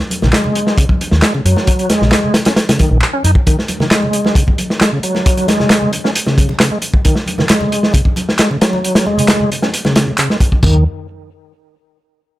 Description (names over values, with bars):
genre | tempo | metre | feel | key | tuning
breakbeat, breaks | 134 BPM | 4/4 | straight | unclear | A4 = 440 Hz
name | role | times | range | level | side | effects
crunchy breakbeat drum kit | drums | 0.1-10.7 s | hi-hat, kick drum, snare drum, splash cymbal, toms | -13 LUFS | equal | none
congas | percussion | 0.1-10.5 s | none | -24 LUFS | right 2 dB | none
bright tonewheel organ | riff | 0.2-10.8 s | Db3 to Eb4 | -17 LUFS | equal | overdrive, chorus vibrato, fast rotary speaker, low-pass filter, ping-pong delay
fingered electric bass | bass | 0.2-3.3, 10.6-10.8 s | Bb1 to Gb2 | -12 LUFS | equal | none
electronic handclaps | drums | 0.3-10.3 s | none | -18 LUFS | equal | none
room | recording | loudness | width
light reverb | none | -11 LUFS | side -16 dB against mid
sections
0.0-10.6 A section; 10.6-12.4 B section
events
filter sweep on tonewheel organ 0.0-10.6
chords
0.0 Ebm7 (rootless); 10.6 N.C.